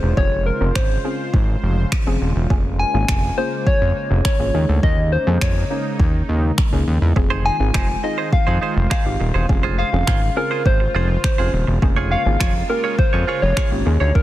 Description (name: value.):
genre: dance-pop.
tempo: 103 BPM.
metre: 4/4.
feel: straight.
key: unclear.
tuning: A4 = 442 Hz.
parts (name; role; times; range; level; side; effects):
soft struck synth lead; melody; 0.0-14.2 s; Bb4 to Ab5; -23 LUFS; left 1 dB; chorus, ping-pong delay.
soft round pluck; accompaniment; 0.0-14.2 s; Bb3 to Bb4; -28 LUFS; left 2 dB; chorus, sidechain pumping.
sweeping resonant pad; sustained chords; 0.0-14.2 s; C3 to C5; -29 LUFS; right 1 dB; chorus, sidechain pumping.
fat analog bass; bass; 0.0-14.2 s; Eb1 to F2; -19 LUFS; equal; sidechain pumping.
deep house drum kit; drums; 0.2-14.2 s; finger snaps, kick drum; -19 LUFS; equal; overdrive, soft clipping on snare.
direct-recorded clean electric guitar; riff; 7.2-14.2 s; Eb4 to Db5; -26 LUFS; right 6 dB; wide subtle chorus.
room: digital ambience.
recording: dense, heavily limited modern master.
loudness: -16 LUFS.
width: side -14 dB against mid.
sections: 0.0-14.2 A section.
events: none.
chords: 0.2 Dbmaj7/F; 2.5 Bbm7/F; 4.5 Eb7sus4; 7.2 Fm7; 9.5 Dbmaj7/F; 11.8 Bbm7/F.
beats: | 0.17 0.76 1.34 1.92 | 2.50 3.08 3.67 4.25 | 4.83 5.42 6.00 6.58 | 7.16 7.75 8.33 8.91 | 9.49 10.08 10.66 11.24 | 11.82 12.41 12.99 13.57 | 14.15.